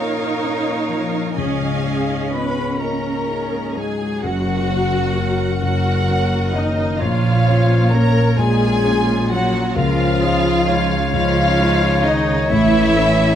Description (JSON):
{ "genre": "cinematic, emotional film score for orchestra", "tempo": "43 BPM (dotted quarters)", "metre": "6/8", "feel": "rubato", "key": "F# major from 4.2 s", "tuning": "A4 = 440 Hz", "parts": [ { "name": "dark studio violin section", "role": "second line", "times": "0.0-13.4 s", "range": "D#4 to Ab5", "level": "-27 LUFS", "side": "left 1 dB", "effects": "none" }, { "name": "dark grand piano", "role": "accompaniment", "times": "0.0-13.4 s", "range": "F#1 to Eb5", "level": "-23 LUFS", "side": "left 2 dB", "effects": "none" }, { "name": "rich studio viola section", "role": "accompaniment", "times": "0.0-13.4 s", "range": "Gb3 to Eb5", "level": "-25 LUFS", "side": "right 1 dB", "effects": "none" }, { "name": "concert harp", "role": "arpeggios", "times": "0.0-13.4 s", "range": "F#2 to F5", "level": "-27 LUFS", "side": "left 7 dB", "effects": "none" }, { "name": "rich studio cello section", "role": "bass", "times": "0.0-13.4 s", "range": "F#2 to Eb4", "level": "-24 LUFS", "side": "right 3 dB", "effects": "none" }, { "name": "rich studio violin section", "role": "melody", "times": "2.3-13.4 s", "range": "D#5 to Cb6", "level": "-24 LUFS", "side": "equal", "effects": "none" }, { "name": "concert flute", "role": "second line", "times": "2.3-13.4 s", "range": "D#5 to Cb6", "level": "-28 LUFS", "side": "left 1 dB", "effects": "none" }, { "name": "mellow French horn section", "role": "sustained chords", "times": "2.3-13.4 s", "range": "D#3 to Cb4", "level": "-24 LUFS", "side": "left 1 dB", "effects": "none" }, { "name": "bright clarinet", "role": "second line", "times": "4.2-13.4 s", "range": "E#4 to C#5", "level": "-26 LUFS", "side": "left 3 dB", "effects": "none" }, { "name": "rich studio double bass section", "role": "bass", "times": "4.2-13.4 s", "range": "F#1 to C#2", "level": "-22 LUFS", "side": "right 3 dB", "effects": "none" } ], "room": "moderate recital hall reverb, RT60 1.4 s", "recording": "close, detailed microphones", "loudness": "-15 LUFS", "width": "side -10 dB against mid", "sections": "0.0-4.2 A section; 4.2-13.4 B section", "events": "none", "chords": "0.0 Bbm; 1.4 Dbadd9; 4.2 F#; 7.0 A#m; 9.8 C#add9; 12.5 A", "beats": "| 1.36 2.80 | 4.24 5.63 | 7.01 8.38 | 9.77 11.13 | 12.51" }